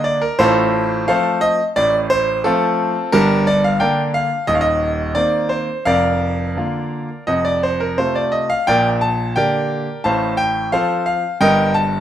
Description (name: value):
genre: classical-period piano sonatina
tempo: 88 BPM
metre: 4/4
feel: straight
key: unclear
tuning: A4 = 440 Hz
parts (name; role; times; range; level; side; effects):
- clear concert grand piano; solo; 0.0-12.0 s; Eb1 to A5; -15 LUFS; equal; none
room: moderate recital hall reverb, RT60 1.4 s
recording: minimal, uncompressed stereo recording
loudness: -15 LUFS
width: side -10 dB against mid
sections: 0.0-12.0 A section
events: none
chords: 0.4 F/A; 3.1 Gm; 4.5 Cm7/Eb; 5.9 Bb/F; 7.3 F; 8.7 Gm/Bb; 10.0 F/A; 11.4 Eb/G